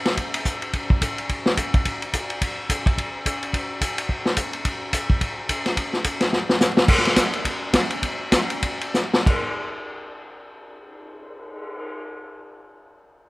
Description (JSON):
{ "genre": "jazz", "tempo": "182-215 BPM", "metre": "4/4", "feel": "swing 59% on 8ths", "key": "none", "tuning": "none", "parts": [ { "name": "vintage drum kit", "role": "drums", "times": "0.1-11.8 s", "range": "crash cymbal, cymbal swell, hi-hat, kick drum, ride cymbal, snare drum", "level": "-21 LUFS", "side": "equal", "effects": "none" } ], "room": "light reverb", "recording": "none", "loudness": "-20 LUFS", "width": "side -22 dB against mid", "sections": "0.0-6.9 A section; 6.9-9.3 B section; 9.3-11.9 C section", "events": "drum fill 6.3-6.9, 8.9-9.3; slowing down 6.9-9.3", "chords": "none" }